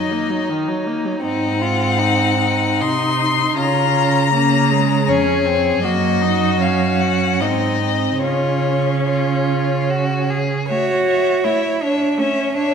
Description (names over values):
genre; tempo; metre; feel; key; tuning
classical, slow romantic movement for string quartet; 71-83 BPM; 3/4; rubato; Db major; A4 = 440 Hz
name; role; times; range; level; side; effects
warm violin; melody; 0.0-12.7 s; Db5 to C6; -21 LUFS; left 8 dB; none
warm violin; second line; 0.0-12.7 s; Db4 to C#5; -22 LUFS; left 2 dB; none
rich viola; accompaniment; 0.0-12.7 s; Eb3 to Eb4; -22 LUFS; right 2 dB; none
warm cello; bass; 1.2-12.7 s; F2 to F#4; -20 LUFS; right 5 dB; none
room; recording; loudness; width
wet scoring stage reverb, RT60 1.7 s; none; -15 LUFS; side -6 dB against mid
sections
0.0-10.7 A section; 10.7-12.7 B section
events
none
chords
0.0 Ebm/Gb; 1.2 Ab7; 3.6 Db; 5.8 Ebm/Gb; 7.4 Ab; 8.2 Db; 10.7 A